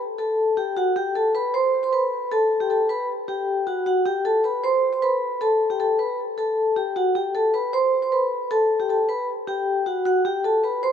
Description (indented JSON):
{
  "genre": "hip hop",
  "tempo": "155 BPM",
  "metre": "4/4",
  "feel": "half-time",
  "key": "unclear",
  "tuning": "A4 = 438 Hz",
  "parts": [
    { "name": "vibraphone with soft mallets", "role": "solo", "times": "0.2-10.9 s", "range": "F#4 to C6", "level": "-20 LUFS", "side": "left 1 dB", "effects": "low-pass filter, ping-pong delay" }
  ],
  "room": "moderate plate reverb, RT60 3.6 s",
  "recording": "none",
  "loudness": "-20 LUFS",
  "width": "side -8 dB against mid",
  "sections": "0.0-10.1 A section",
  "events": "none",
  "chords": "0.0 Am13/F#"
}